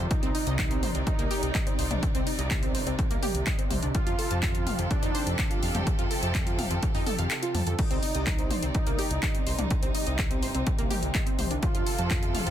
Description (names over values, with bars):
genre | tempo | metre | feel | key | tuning
melodic techno | 125 BPM | 4/4 | straight | C dorian | A4 = 440 Hz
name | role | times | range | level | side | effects
rich chamber string section | sustained chords | 0.0-12.5 s | C3 to D5 | -37 LUFS | equal | sidechain pumping
wide unison pluck | arpeggios | 0.0-12.5 s | Bb3 to A6 | -34 LUFS | right 1 dB | sidechain pumping, tape echo
dark detuned saw bass | bass | 0.0-12.5 s | F1 to F2 | -31 LUFS | equal | sidechain pumping
swarming drone | drone | 0.0-12.5 s | C3 | -40 LUFS | right 1 dB | built-in reverb, sidechain pumping
soft supersaw | melody | 0.1-12.5 s | D4 to F4 | -35 LUFS | right 1 dB | digital delay
deep house drum kit | drums | 0.1-12.5 s | crash cymbal, handclaps, hi-hat, toms | -32 LUFS | left 2 dB | none
electronic kick drum | drums | 0.1-12.2 s | none | -28 LUFS | equal | none
room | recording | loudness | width
little or no reverb | dense, heavily limited modern master | -25 LUFS | side -10 dB against mid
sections
0.0-12.5 A section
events
kick drops out 7.3-7.8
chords
0.1 Cm; 3.9 F; 7.8 Cm; 11.6 F